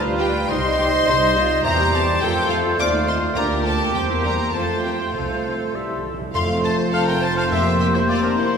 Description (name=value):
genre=quick classical-period movement for symphony orchestra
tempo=103 BPM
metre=2/4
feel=straight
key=F major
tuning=A4 = 440 Hz
part: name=mellow hollow concert flute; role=second line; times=0.0-8.6 s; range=A4 to C6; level=-28 LUFS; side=right 2 dB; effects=none
part: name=warm oboe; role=second line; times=0.0-8.6 s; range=Bb4 to C6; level=-28 LUFS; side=right 1 dB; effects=none
part: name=mellow bassoon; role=accompaniment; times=0.0-8.6 s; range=G3 to Bb3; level=-29 LUFS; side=equal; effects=none
part: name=mellow French horn section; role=sustained chords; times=0.0-8.6 s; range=G3 to G4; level=-28 LUFS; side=left 2 dB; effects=none
part: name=mellow trumpet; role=stabs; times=0.0-8.6 s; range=B4 to D5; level=-26 LUFS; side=equal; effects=none
part: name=dark studio double bass section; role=bass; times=0.0-8.6 s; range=F1 to F2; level=-26 LUFS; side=right 2 dB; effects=none
part: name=warm studio cello section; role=bass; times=0.0-8.6 s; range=F2 to A4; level=-28 LUFS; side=right 2 dB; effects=none
part: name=clear studio violin section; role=melody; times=0.2-8.6 s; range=Bb4 to D6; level=-25 LUFS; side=left 4 dB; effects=none
part: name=warm studio violin section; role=second line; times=0.2-8.6 s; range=D4 to F5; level=-28 LUFS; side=left 2 dB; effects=none
part: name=dark studio viola section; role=accompaniment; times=0.2-8.6 s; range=E3 to G4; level=-28 LUFS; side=equal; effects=none
part: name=timpani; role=percussion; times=5.1-8.3 s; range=F2 to C3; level=-30 LUFS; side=left 1 dB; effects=none
room=wet concert hall reverb, RT60 2.3 s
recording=recorded in a church or concert hall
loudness=-17 LUFS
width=side -6 dB against mid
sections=0.0-6.3 A section; 6.3-8.6 B section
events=timpani fill 5.7-6.3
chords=0.5 Cm; 1.7 C7/E; 2.2 F; 2.8 F7/Eb; 3.4 Bb/D; 4.0 C7/E; 4.5 F; 5.1 F/C; 5.7 C; 6.3 F; 7.5 C5/F